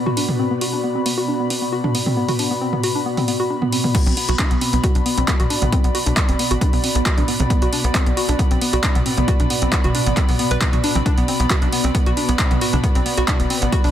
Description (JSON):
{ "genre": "driving peak-time techno", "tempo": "135 BPM", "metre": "4/4", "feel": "straight", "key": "B phrygian", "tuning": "A4 = 441 Hz", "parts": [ { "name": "swarming drone", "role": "drone", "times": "0.0-13.9 s", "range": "B2 to B3", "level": "-27 LUFS", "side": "equal", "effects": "built-in reverb, sidechain pumping" }, { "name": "airy breathy pad", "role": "texture", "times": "0.0-13.9 s", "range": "B3 to B5", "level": "-24 LUFS", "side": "equal", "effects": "chorus, sidechain pumping" }, { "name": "warbly dusty pluck", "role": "riff", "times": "0.1-13.9 s", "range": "B3 to B4", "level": "-24 LUFS", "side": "equal", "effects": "chorus, sidechain pumping, digital delay" }, { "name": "punchy analog drum machine", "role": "drums", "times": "0.1-13.9 s", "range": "crash cymbal, handclaps, hi-hat, toms", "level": "-23 LUFS", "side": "equal", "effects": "overdrive" }, { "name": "electronic kick drum", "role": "drums", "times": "3.9-13.8 s", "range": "none", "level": "-18 LUFS", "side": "equal", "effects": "overdrive" }, { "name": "tight sequencer bass", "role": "bass", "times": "4.1-13.9 s", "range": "F#1 to B1", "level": "-21 LUFS", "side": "equal", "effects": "sidechain pumping" } ], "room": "light reverb", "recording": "none", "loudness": "-16 LUFS", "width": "side -11 dB against mid", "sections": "0.0-3.9 A section; 3.9-13.9 B section", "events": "drop 3.9-13.9", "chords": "0.0 Bm" }